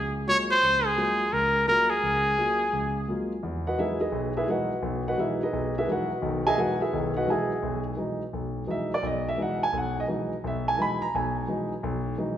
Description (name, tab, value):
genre	jazz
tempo	171 BPM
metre	4/4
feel	swing 65% on 8ths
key	E major from 3.4 s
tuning	A4 = 440 Hz
part	clear trumpet	melody	0.0-3.3 s	Ab4 to Db5	-22 LUFS	equal	none
part	dark concert grand piano	accompaniment	0.0-12.4 s	B1 to B5	-26 LUFS	equal	none
room	wet recital hall reverb, RT60 1.8 s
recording	recorded in a church or concert hall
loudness	-24 LUFS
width	side -10 dB against mid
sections	0.0-3.4 A section; 3.4-12.4 B section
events	none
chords	0.0 Gbmaj9; 3.4 Emaj9